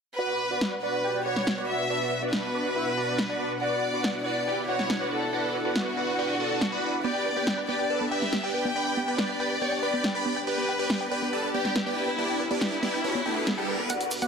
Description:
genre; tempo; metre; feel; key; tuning
uplifting trance; 140 BPM; 4/4; straight; B minor; A4 = 439 Hz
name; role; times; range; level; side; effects
supersaw chords; melody; 0.2-14.3 s; G3 to C#6; -30 LUFS; right 1 dB; phaser, lush chorus, low-pass filter, ping-pong delay
warm chamber violin section; second line; 0.2-13.8 s; E4 to G5; -30 LUFS; left 2 dB; ping-pong delay
supersaw pad; sustained chords; 0.3-14.3 s; B2 to F#5; -34 LUFS; equal; none
punchy analog drum machine; drums; 0.6-14.3 s; hi-hat, snare drum; -29 LUFS; equal; overdrive, high-pass filter on snare, high-pass filter on hats
tight sequenced synth; arpeggios; 7.0-14.3 s; B3 to G5; -34 LUFS; right 1 dB; chorus, ping-pong delay
riser; sound effects; 11.6-14.3 s; none; -36 LUFS; left 2 dB; none
analog pluck; second line; 13.9-14.3 s; F#5; -33 LUFS; right 4 dB; chorus
egg shaker; percussion; 13.9-14.3 s; none; -36 LUFS; right 2 dB; none
room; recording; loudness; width
light reverb, digital ambience; dense, heavily limited modern master; -25 LUFS; side -6 dB against mid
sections
0.2-13.9 A section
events
filter sweep on supersaw synth 0.2-13.9; riser 11.6-13.9, 13.9-14.3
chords
0.2 Bm; 7.0 G

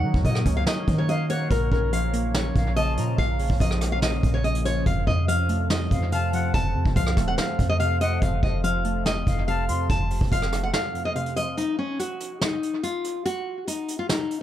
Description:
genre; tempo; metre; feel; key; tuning
hip hop, trap; 143 BPM; 4/4; half-time; unclear; A4 = 439 Hz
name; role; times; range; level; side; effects
nylon-string guitar; melody; 0.0-14.4 s; Db4 to A5; -27 LUFS; left 1 dB; low-pass filter, dub echo
glassy digital keys; accompaniment; 0.0-11.6 s; F2 to Db4; -30 LUFS; equal; chorus, low-pass filter, dub echo
deep dark ambient pad; sustained chords; 0.0-11.5 s; F3 to Db5; -34 LUFS; left 1 dB; chorus, built-in reverb
warm 808-style bass; bass; 0.0-10.7 s; Eb1 to Eb3; -26 LUFS; equal; none
vintage brush drum kit; drums; 0.1-14.4 s; hi-hat, kick drum, rim click, snare drum; -26 LUFS; equal; none
jazz flute; second line; 1.1-3.2, 5.9-9.9 s; F5 to C6; -36 LUFS; left 4 dB; dub echo
room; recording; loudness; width
light reverb, small room ambience; echo-heavy mix; -22 LUFS; side -12 dB against mid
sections
0.0-11.6 A section; 11.6-14.4 B section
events
break 10.7-11.6, 11.6-14.4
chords
0.0 Ebm7; 1.5 Bbm; 4.9 F; 11.6 N.C.

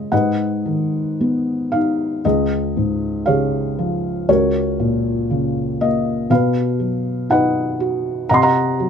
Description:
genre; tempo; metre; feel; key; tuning
classical, lyrical solo piano; 56-61 BPM; 4/4; rubato; G# dorian; A4 = 440 Hz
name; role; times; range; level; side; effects
felt-muted upright piano; solo; 0.0-8.9 s; C#2 to C6; -16 LUFS; left 1 dB; none
room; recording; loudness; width
light reverb; close, detailed microphones; -16 LUFS; side -7 dB against mid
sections
0.0-8.9 A section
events
none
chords
0.1 G#m; 2.2 C#; 4.3 F#/C#; 6.3 B; 8.3 Cm7b5

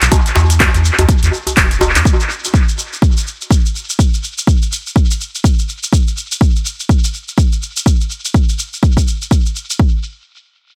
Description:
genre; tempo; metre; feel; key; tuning
afro house; 124 BPM; 4/4; swing 58% on 16ths; unclear; A4 = 440 Hz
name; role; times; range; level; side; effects
round analog bass; bass; 0.0-2.0 s; E1 to E2; -16 LUFS; equal; sidechain pumping
deep house drum kit; drums; 0.0-9.8 s; handclaps, hi-hat, shaker; -21 LUFS; equal; tape echo
electronic kick drum; drums; 0.1-9.9 s; none; -14 LUFS; equal; overdrive
djembe; percussion; 0.1-1.9 s; none; -21 LUFS; equal; tape echo
room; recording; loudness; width
digital ambience; echo-heavy mix; -14 LUFS; mono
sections
0.0-9.8 A section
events
filter sweep on analog synth bass 0.0-2.1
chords
none

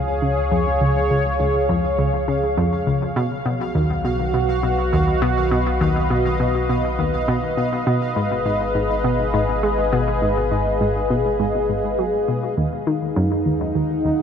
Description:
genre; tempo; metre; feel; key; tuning
ambient, sequencer-driven space music; 102 BPM; 4/4; straight; unclear; A4 = 441 Hz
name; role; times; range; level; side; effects
sweeping resonant pad; sustained chords; 0.0-14.2 s; Eb4 to Bb5; -21 LUFS; equal; chorus
analog pluck; riff; 0.0-14.2 s; Db2 to Ab3; -22 LUFS; equal; chorus, ping-pong delay
round analog bass; bass; 0.0-14.2 s; Ab1 to Eb2; -27 LUFS; equal; none
pulsing gated texture; texture; 0.0-12.6 s; F5; -30 LUFS; right 1 dB; chorus, built-in reverb
room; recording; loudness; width
wet huge ambient reverb, RT60 7.5 s; cassette tape; -18 LUFS; side -7 dB against mid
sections
0.0-12.6 A section; 12.6-14.2 A section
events
none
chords
0.0 Db; 3.2 B; 7.9 Abm; 12.6 Ebmadd9

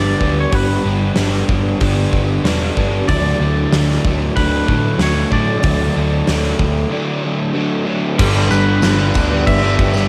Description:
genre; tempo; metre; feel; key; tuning
rock, shoegaze and dream pop; 94 BPM; 4/4; straight; G major; A4 = 440 Hz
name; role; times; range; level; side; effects
twangy electric guitar; melody; 0.0-10.1 s; B4 to E5; -25 LUFS; equal; analog delay
overdriven semi-hollow guitar; riff; 0.0-10.1 s; G2 to D4; -22 LUFS; equal; lush chorus, cassette tape
overdriven semi-hollow guitar; riff; 0.0-10.1 s; G2 to D4; -24 LUFS; equal; reverse reverb, cassette tape
hollow-body short-scale picked electric bass; bass; 0.0-10.1 s; E1 to A2; -21 LUFS; equal; none
gated 80s drum kit; drums; 0.2-10.0 s; crash cymbal, hi-hat, kick drum, snare drum; -22 LUFS; equal; none
overdriven electric guitar; riff; 8.2-10.1 s; G2 to G3; -23 LUFS; equal; cassette tape
tambourine; percussion; 8.5-10.1 s; none; -36 LUFS; equal; none
room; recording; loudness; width
studio ambience; home recording on cassette; -16 LUFS; mono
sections
0.0-8.2 A section; 8.2-10.1 B section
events
break 6.9-8.2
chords
0.0 G; 3.1 D; 8.2 G

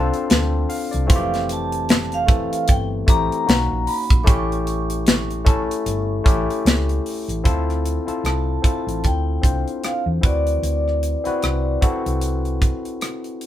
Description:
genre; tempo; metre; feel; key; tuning
lush 1970s-style soul; 76 BPM; 4/4; swing 58% on 16ths; D minor; A4 = 440 Hz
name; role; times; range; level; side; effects
barky tine electric piano; accompaniment; 0.0-13.5 s; E3 to G5; -24 LUFS; left 3 dB; overdrive
hollow-body short-scale fingered electric bass; bass; 0.0-12.7 s; F1 to E2; -23 LUFS; equal; none
tight funk drum kit; drums; 0.1-13.5 s; hi-hat, kick drum, rim click, snare drum; -17 LUFS; equal; none
vibraphone with medium hard mallets; melody; 1.1-11.8 s; D5 to D6; -25 LUFS; equal; none
room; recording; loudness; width
light reverb; band playing live in one room; -18 LUFS; side -12 dB against mid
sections
0.0-7.4 A section; 7.4-13.5 B section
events
none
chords
0.0 Bbmaj9 (rootless); 1.1 Fmaj9; 3.5 Bmaj9; 4.3 A7; 7.4 Dm7; 10.2 D13

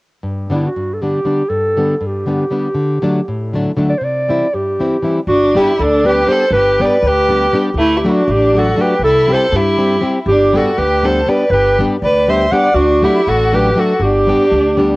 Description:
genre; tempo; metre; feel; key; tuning
balkan folk, Balkan wedding band; 240 BPM (eighths); 5/8; straight; G major; A4 = 440 Hz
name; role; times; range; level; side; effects
nylon-string guitar; accompaniment; 0.2-14.9 s; G2 to G4; -17 LUFS; left 1 dB; cassette tape
warm clarinet; melody; 0.5-15.0 s; E4 to F#5; -15 LUFS; right 1 dB; cassette tape
rich violin; second line; 5.3-15.0 s; A3 to D5; -16 LUFS; equal; cassette tape, tape echo
upright bass; bass; 5.3-15.0 s; G1 to G2; -19 LUFS; equal; none
room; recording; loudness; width
light reverb; home recording on cassette; -12 LUFS; side -22 dB against mid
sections
0.2-5.3 A section; 5.3-15.0 B section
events
none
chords
0.2 G; 2.8 D; 4.0 C; 5.3 G; 7.8 D; 9.0 C; 10.3 G; 12.8 D; 14.0 G

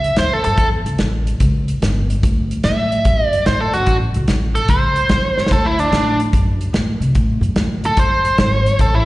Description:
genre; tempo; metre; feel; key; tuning
electric blues shuffle; 146 BPM; 4/4; swing 68% on 8ths; unclear; A4 = 443 Hz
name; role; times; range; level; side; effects
biting lead guitar; melody; 0.0-9.1 s; D4 to E5; -17 LUFS; right 1 dB; overdrive, slapback echo
upright bass; bass; 0.0-9.1 s; G1 to C3; -18 LUFS; equal; none
natural country drum kit; drums; 0.0-8.9 s; hi-hat, kick drum, snare drum; -18 LUFS; equal; none
room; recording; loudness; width
light reverb; live gig heard through the venue's PA, recital hall reverb, nothing above 10.9 kHz; -14 LUFS; side -18 dB against mid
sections
0.0-9.1 A section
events
drum fill 5.3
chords
0.0 A7; 2.2 D; 3.9 A7; 5.5 D7

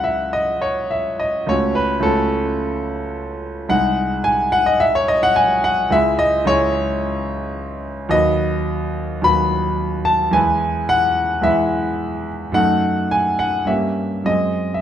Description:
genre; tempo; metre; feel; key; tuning
classical, romantic character piece for solo piano; 108 BPM; 4/4; uneven beats, rubato; C# minor; A4 = 439 Hz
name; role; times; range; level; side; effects
warm concert grand piano; solo; 0.0-14.8 s; B#1 to B5; -16 LUFS; equal; none
room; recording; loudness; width
moderate recital hall reverb, RT60 1.5 s; dark, warm production; -16 LUFS; side -10 dB against mid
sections
0.0-14.8 A section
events
none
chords
0.0 C#m; 1.5 F#m/C#; 3.7 G#7/B#; 5.9 C#m; 8.1 B/D#; 10.4 E; 12.6 D#dim/F#; 13.7 Gdim7; 14.3 G#7/F#

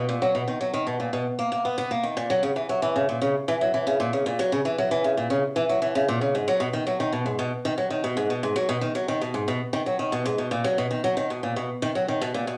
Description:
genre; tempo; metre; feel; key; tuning
folktronica; 115 BPM; 4/4; straight; unclear; A4 = 441 Hz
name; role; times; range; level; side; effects
picked swing-style acoustic guitar; solo; 0.0-12.6 s; G#2 to B3; -26 LUFS; equal; vintage 12-bit sampler grit
room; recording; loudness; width
moderate studio reverb, RT60 0.5 s; home recording on cassette, low-pass filter, studio ambience; -26 LUFS; mono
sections
0.0-2.2 A section; 2.2-12.6 B section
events
none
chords
none

